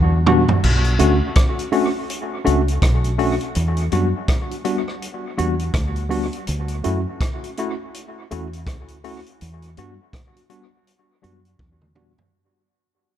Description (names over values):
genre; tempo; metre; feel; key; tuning
lovers rock reggae; 82 BPM; 4/4; swing 60% on 16ths; unclear; A4 = 436 Hz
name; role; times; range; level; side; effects
deep dub fingered electric bass; bass; 0.0-12.1 s; B1 to G2; -20 LUFS; equal; none
tine electric piano; accompaniment; 0.3-12.1 s; G3 to F#4; -22 LUFS; left 1 dB; overdrive, fast stereo tremolo, dub echo
vintage drum kit; drums; 0.3-12.3 s; crash cymbal, hi-hat, kick drum, rim click, toms; -21 LUFS; equal; dub echo
room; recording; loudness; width
light reverb; dark, warm production; -18 LUFS; side -10 dB against mid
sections
0.6-12.3 A section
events
drum fill 0.0-0.6, 11.6-12.3; fade-out 0.6-12.3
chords
0.0 Em7; 0.6 Bm7; 3.5 Em7; 6.5 Dmaj9; 9.4 Em7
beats
| 0.63 1.36 2.09 2.82 | 3.55 4.28 5.01 5.74 | 6.47 7.20 7.94 8.67 | 9.40 10.13 10.86 11.60